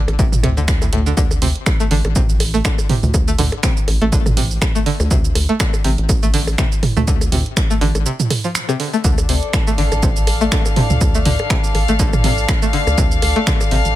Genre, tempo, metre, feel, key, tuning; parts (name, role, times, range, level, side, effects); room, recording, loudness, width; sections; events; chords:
minimal techno; 122 BPM; 4/4; swing 56% on 16ths; D minor; A4 = 439 Hz
rubbery square bass; bass; 0.0-14.0 s; A1 to D2; -19 LUFS; equal; sidechain pumping
punchy analog drum machine; drums; 0.1-13.9 s; finger snaps, hi-hat, shaker; -23 LUFS; right 3 dB
electronic percussion blips and toms; percussion; 0.1-13.7 s; -22 LUFS; right 2 dB; overdrive, tape echo
string-like resonator pluck; riff; 0.2-13.8 s; A2 to A3; -22 LUFS; equal; chorus, sidechain pumping, ping-pong delay
electronic kick drum; drums; 0.2-13.6 s; -18 LUFS; equal
warm chamber string section; texture; 9.0-14.0 s; D4 to F5; -21 LUFS; left 2 dB; sidechain pumping
light reverb; -14 LUFS; side -14 dB against mid
0.0-9.0 A section; 9.0-14.0 A section
drop 0.0-9.0, 9.0-14.0; break 8.1-9.0
0.0 D5; 9.0 Dm